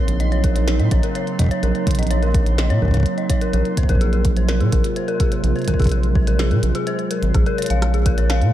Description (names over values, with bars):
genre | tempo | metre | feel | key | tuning
IDM | 126 BPM | 4/4 | straight | unclear | A4 = 439 Hz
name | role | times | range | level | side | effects
warbly tape-like pad | sustained chords | 0.0-8.5 s | C3 to F4 | -25 LUFS | right 4 dB | chorus, built-in reverb, vintage 12-bit sampler grit
dark detuned synth bell | arpeggios | 0.0-8.3 s | Ab4 to F5 | -25 LUFS | left 4 dB | chorus, digital delay
bubbling stepped-filter texture | texture | 0.0-7.4 s | C4 to C6 | -34 LUFS | right 4 dB | chorus, built-in reverb
round analog bass | bass | 0.1-8.5 s | Ab1 to Bb2 | -18 LUFS | equal | none
glitchy drum kit | drums | 0.1-8.5 s | hi-hat, rim click, snare drum, toms | -29 LUFS | right 1 dB | digital delay
electronic kick drum | drums | 0.4-8.2 s | none | -19 LUFS | equal | none
room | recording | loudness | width
light reverb | dark, warm production | -16 LUFS | side -12 dB against mid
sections
0.0-7.3 A section; 7.3-8.5 B section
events
kick drops out 6.4-7.3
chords
0.0 Gb6/Bb; 3.5 Ab13/Bb; 7.3 Bbm7